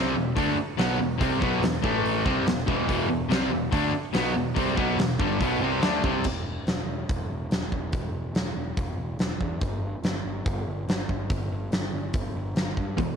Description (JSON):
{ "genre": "classic rock", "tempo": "142 BPM", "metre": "4/4", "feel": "straight", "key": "E minor", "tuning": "A4 = 440 Hz", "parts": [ { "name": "distorted electric guitar", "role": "riff", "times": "0.0-6.2, 13.0-13.2 s", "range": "E2 to D4", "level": "-27 LUFS", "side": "left 12 dB", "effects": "distortion" }, { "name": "overdriven electric guitar", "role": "riff", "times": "0.0-6.2, 13.0-13.2 s", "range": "E2 to D4", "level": "-28 LUFS", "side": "right 12 dB", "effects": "spring reverb" }, { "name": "fuzz picked electric bass", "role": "bass", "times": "0.0-13.2 s", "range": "E1 to G2", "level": "-32 LUFS", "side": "equal", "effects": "overdrive" }, { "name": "huge arena drum kit", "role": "drums", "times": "0.4-13.1 s", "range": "crash cymbal, hi-hat, kick drum, snare drum", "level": "-28 LUFS", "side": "equal", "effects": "none" } ], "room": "light reverb", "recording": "1960s-style stereo with parts hard left and right", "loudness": "-24 LUFS", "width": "side -6 dB against mid", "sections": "0.0-6.2 A section; 6.2-13.2 B section", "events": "none", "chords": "0.0 Em; 1.8 A5; 2.3 Em; 6.2 N.C." }